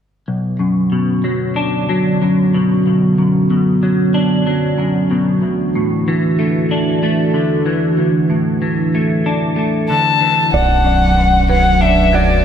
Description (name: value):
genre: rock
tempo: 94 BPM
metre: 4/4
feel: straight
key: B minor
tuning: A4 = 439 Hz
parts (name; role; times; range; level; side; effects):
- dark analog pad; sustained chords; 0.3-12.4 s; D3 to B4; -19 LUFS; right 2 dB; chorus
- semi-hollow electric guitar; arpeggios; 0.3-12.4 s; B1 to D4; -16 LUFS; left 1 dB; analog chorus, ping-pong delay
- dark violin; melody; 9.9-12.4 s; D5 to A5; -13 LUFS; left 3 dB; ping-pong delay
- felt-muted upright piano; arpeggios; 10.5-12.4 s; B4 to F#5; -22 LUFS; right 4 dB; ping-pong delay
- growling fingered electric bass; bass; 10.5-12.4 s; B0; -15 LUFS; equal; overdrive
room: wet plate reverb, RT60 2.7 s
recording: dreamy mix soaked in reverb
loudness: -13 LUFS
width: side -8 dB against mid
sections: 0.3-10.5 A section; 10.5-12.4 B section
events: none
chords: 0.3 Bm; 5.4 Dadd9; 10.5 Bm